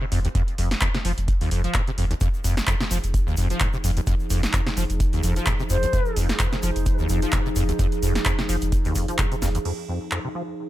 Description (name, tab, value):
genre	acid house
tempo	129 BPM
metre	4/4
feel	swing 56% on 16ths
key	unclear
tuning	A4 = 440 Hz
part	deep acid bass	riff	0.0-10.4 s	Eb2 to F3	-27 LUFS	equal	tube saturation, ensemble chorus
part	warm sub bass	bass	0.1-9.6 s	F1	-25 LUFS	equal	sidechain pumping
part	electro analog drum machine	drums	0.1-10.2 s	crash cymbal, handclaps, hi-hat, snare drum	-28 LUFS	equal	none
part	electronic kick drum	drums	0.3-9.3 s	none	-24 LUFS	equal	none
part	warbly tape-like pad	sustained chords	2.6-10.7 s	F3 to Ab4	-30 LUFS	right 2 dB	chorus, built-in reverb, sidechain pumping
part	egg shaker	percussion	2.2-9.6 s	none	-39 LUFS	left 4 dB	none
part	mellow silver concert flute	melody	5.7-6.2 s	C5	-31 LUFS	left 2 dB	dub echo
room	digital ambience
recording	none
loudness	-20 LUFS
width	side -14 dB against mid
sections	0.0-9.7 A section; 9.7-10.7 B section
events	drop 0.0-9.7; filter sweep on acid bass 9.7-10.7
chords	0.0 Fm7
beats	| 0.35 0.81 1.28 1.75 | 2.21 2.68 3.14 3.61 | 4.07 4.54 5.00 5.47 | 5.93 6.40 6.86 7.33 | 7.79 8.26 8.72 9.19 | 9.65 10.12 10.58